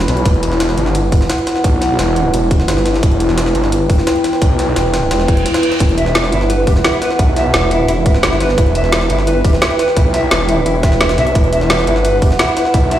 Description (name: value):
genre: dark technical drum and bass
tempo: 173 BPM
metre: 4/4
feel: straight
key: E minor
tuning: A4 = 441 Hz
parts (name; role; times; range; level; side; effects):
- dark analog pad; sustained chords; 0.0-13.0 s; E4 to B5; -17 LUFS; right 1 dB; chorus, sidechain pumping
- wide detuned saw bass; bass; 0.0-13.0 s; E1 to B1; -16 LUFS; equal; chorus, tube saturation
- drum and bass drum kit; drums; 0.1-13.0 s; hi-hat, snare drum; -19 LUFS; equal; none
- jungle sampler-style drum kit; drums; 0.1-13.0 s; hi-hat, snare drum; -23 LUFS; equal; high-pass filter on hats, high-pass filter on snare, high-pass filter on room
- electronic kick drum; drums; 0.3-12.8 s; none; -13 LUFS; equal; none
- reverse cymbal; sound effects; 5.2-5.8 s; none; -24 LUFS; right 3 dB; none
- mellow electric guitar; arpeggios; 5.8-13.0 s; E4 to E5; -19 LUFS; left 1 dB; tremolo, sidechain pumping, tape echo
room: moderate lush hall reverb, RT60 2.0 s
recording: played on a big sound system in a bare room, stone room reverb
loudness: -11 LUFS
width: side -12 dB against mid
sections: 0.0-13.0 A section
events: reverse cymbal 5.2-5.8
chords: 0.0 Emadd9